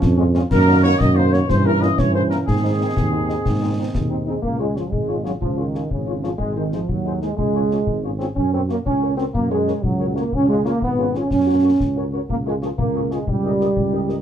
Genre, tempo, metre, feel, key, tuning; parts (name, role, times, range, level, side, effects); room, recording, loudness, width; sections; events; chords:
military-style march for wind band; 122 BPM (dotted quarters); 6/8; straight; Db major; A4 = 440 Hz
clear trombone section; sustained chords; 0.0-14.2 s; Db3 to Db4; -21 LUFS; right 2 dB
mellow tuba; bass; 0.0-14.2 s; Ab1 to Ab2; -22 LUFS; right 2 dB
concert snare drum, concert bass drum and clash cymbals; drums; 0.0-14.2 s; -26 LUFS; left 2 dB
mellow French horn section; accompaniment; 0.2-14.1 s; Gb3 to Bb4; -27 LUFS; left 4 dB
dark trumpet section; melody; 0.5-14.2 s; Ab4 to Eb5; -28 LUFS; left 3 dB
mellow hollow small flute group; second line; 0.5-4.2 s; Ab4 to Eb5; -25 LUFS; right 1 dB
light reverb; dark, warm production; -17 LUFS; side -9 dB against mid
0.0-4.4 A section; 4.4-14.2 B section
0.0 Db/F; 0.5 Ebm/Gb; 1.5 Gdim7; 2.5 Ab; 4.4 Db; 6.4 Ab7; 7.4 Db; 8.4 Gb; 10.3 Db7; 11.3 Gb; 12.3 Bbm7/Db; 13.3 Eb7/Db